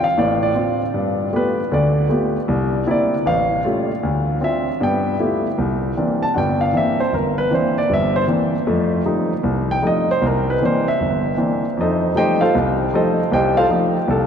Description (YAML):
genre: solo jazz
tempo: 155 BPM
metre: 4/4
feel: swing 64% on 8ths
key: C mixolydian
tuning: A4 = 439 Hz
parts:
  - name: warm grand piano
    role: solo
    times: 0.0-14.3 s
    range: G1 to A5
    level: -16 LUFS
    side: equal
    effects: none
room: wet cathedral reverb, RT60 6.2 s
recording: in a vast, echoing space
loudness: -16 LUFS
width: side -7 dB against mid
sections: 0.0-5.6 A section; 5.6-14.3 A section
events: grand piano solo 0.0-14.3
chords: 0.0 Dm7; 0.9 G9; 2.5 C9; 3.3 A7b13; 4.0 Dm7; 4.8 G13; 5.6 C9; 8.7 F9; 10.2 C9; 11.8 F9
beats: 0.16 0.55 | 0.94 1.32 1.71 2.10 | 2.49 2.87 3.26 3.65 | 4.03 4.42 4.81 5.19 | 5.58 5.97 6.35 6.74 | 7.13 7.51 7.90 8.29 | 8.67 9.06 9.45 9.83 | 10.22 10.61 10.99 11.38 | 11.76 12.15 12.54 12.92 | 13.31 13.69 14.08